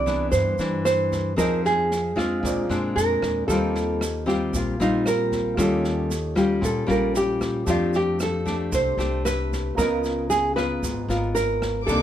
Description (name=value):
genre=bossa nova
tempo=114 BPM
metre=4/4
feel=straight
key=unclear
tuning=A4 = 440 Hz
part: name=nylon-string guitar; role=melody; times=0.0-12.0 s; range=Eb4 to D5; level=-24 LUFS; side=right 2 dB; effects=none
part: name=clear grand piano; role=accompaniment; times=0.0-12.0 s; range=Bb3 to B5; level=-34 LUFS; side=right 1 dB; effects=none
part: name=nylon-string guitar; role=accompaniment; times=0.0-12.0 s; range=G2 to A#4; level=-25 LUFS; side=left 2 dB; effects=none
part: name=upright bass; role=bass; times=0.0-12.0 s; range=G#1 to G2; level=-30 LUFS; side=equal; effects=none
part: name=open jazz drum kit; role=drums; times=0.1-12.0 s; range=kick drum, rim click, snare drum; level=-33 LUFS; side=right 1 dB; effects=none
part: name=tube shaker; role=percussion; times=0.1-12.0 s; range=none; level=-39 LUFS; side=right 6 dB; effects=none
part: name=clear studio violin section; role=sustained chords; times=11.9-12.0 s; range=Bb3 to D6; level=-26 LUFS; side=right 1 dB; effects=none
room=light reverb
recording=none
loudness=-21 LUFS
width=side -10 dB against mid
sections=0.0-12.0 A section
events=none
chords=0.0 Cmaj9; 1.4 Fm7; 2.4 Bb9; 3.5 Eb69; 5.6 Eb9; 7.7 F69; 9.8 C#13